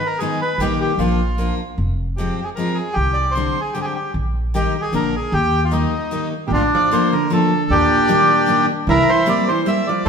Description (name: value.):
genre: musette waltz.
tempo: 152 BPM.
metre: 3/4.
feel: straight.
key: Eb major, Bb major from 6.5 s.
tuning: A4 = 443 Hz.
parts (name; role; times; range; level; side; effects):
bandoneon; melody; 0.0-10.1 s; D4 to E5; -18 LUFS; equal; none.
picked steel-string acoustic guitar; accompaniment; 0.0-9.9 s; D3 to F4; -23 LUFS; left 2 dB; none.
upright bass; bass; 0.6-10.1 s; F1 to Eb2; -22 LUFS; equal; none.
hollow-body jazz guitar; second line; 6.5-10.1 s; A2 to G3; -21 LUFS; right 3 dB; none.
room: wet stone room reverb, RT60 1.6 s.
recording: band playing live in one room.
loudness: -16 LUFS.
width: side -6 dB against mid.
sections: 0.0-6.5 A section; 6.5-10.1 B section.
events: none.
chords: 0.0 Abm; 0.6 Eb/Bb; 1.0 Bb; 1.8 Fm; 3.0 Csus2; 4.1 Eb/Bb; 4.9 Bb; 5.3 Eb; 6.5 Bbmaj7; 7.7 Ebmaj7; 8.9 C7.